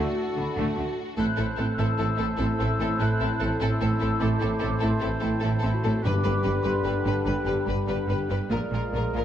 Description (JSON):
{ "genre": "cinematic", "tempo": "99 BPM (dotted quarters)", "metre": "12/8", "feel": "straight", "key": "unclear", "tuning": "A4 = 440 Hz", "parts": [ { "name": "rich studio violin section", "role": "melody", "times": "0.0-9.2 s", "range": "F#4 to B4", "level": "-34 LUFS", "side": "left 4 dB", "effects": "none" }, { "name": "dark clarinet", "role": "second line", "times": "0.0-9.2 s", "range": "E4 to Ab4", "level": "-36 LUFS", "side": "left 3 dB", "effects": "none" }, { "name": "mellow hollow large flute ensemble", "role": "second line", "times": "0.0-9.2 s", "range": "D5 to F#6", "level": "-35 LUFS", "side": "left 2 dB", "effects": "none" }, { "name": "rich symphonic violin section", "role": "second line", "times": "0.0-9.2 s", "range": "D4 to G4", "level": "-39 LUFS", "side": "left 3 dB", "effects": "none" }, { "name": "warm oboe", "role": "second line", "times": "0.0-9.2 s", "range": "A4 to C5", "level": "-38 LUFS", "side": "right 2 dB", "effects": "none" }, { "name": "clear symphonic viola section", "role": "accompaniment", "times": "0.0-9.2 s", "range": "G3 to C4", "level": "-36 LUFS", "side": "right 1 dB", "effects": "none" }, { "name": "mellow trombone section", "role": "sustained chords", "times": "0.0-9.2 s", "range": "A2 to A3", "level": "-36 LUFS", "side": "right 3 dB", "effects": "none" }, { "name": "warm French horn section", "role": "sustained chords", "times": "0.0-9.2 s", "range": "Bb3 to G4", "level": "-34 LUFS", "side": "left 5 dB", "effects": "none" }, { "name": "mellow trumpet", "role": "stabs", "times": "0.0-9.2 s", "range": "A4 to B4", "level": "-35 LUFS", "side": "right 1 dB", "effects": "none" }, { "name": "clear symphonic cello section", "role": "bass", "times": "0.0-9.2 s", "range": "G2 to D3", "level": "-30 LUFS", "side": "right 2 dB", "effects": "none" }, { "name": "rich symphonic double bass section", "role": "bass", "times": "0.0-9.2 s", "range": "G1 to D2", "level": "-29 LUFS", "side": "right 2 dB", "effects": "none" }, { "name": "timpani", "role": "percussion", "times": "6.1-6.6 s", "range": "G2", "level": "-30 LUFS", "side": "left 1 dB", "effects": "none" } ], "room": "moderate scoring stage reverb, RT60 1.9 s", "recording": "dark, warm production", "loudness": "-23 LUFS", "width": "side -10 dB against mid", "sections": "0.0-9.2 A section", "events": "none", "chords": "0.0 D; 1.2 Am; 6.0 G; 8.5 Bb7" }